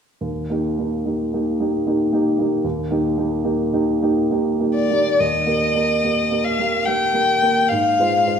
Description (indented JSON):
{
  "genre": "classical, romantic duo for violin and grand piano",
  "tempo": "72 BPM",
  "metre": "3/4",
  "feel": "uneven beats, rubato",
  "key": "Eb major",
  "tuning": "A4 = 436 Hz",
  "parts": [
    { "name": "warm baby grand piano", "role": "accompaniment", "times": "0.2-8.4 s", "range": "Eb2 to C5", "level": "-19 LUFS", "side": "right 2 dB", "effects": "none" },
    { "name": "warm violin", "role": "melody", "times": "4.8-8.4 s", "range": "D5 to G5", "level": "-17 LUFS", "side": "left 3 dB", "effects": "none" }
  ],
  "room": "wet scoring stage reverb, RT60 1.6 s",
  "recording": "minimal, uncompressed stereo recording",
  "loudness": "-17 LUFS",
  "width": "side -7 dB against mid",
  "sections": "0.2-5.2 A section; 5.2-8.4 B section",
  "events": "none",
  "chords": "0.2 Eb; 7.7 Fm/Ab",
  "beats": "| 0.21 1.05 1.86 | 2.64 3.45 4.30 | 5.20 6.04 6.86 | 7.69"
}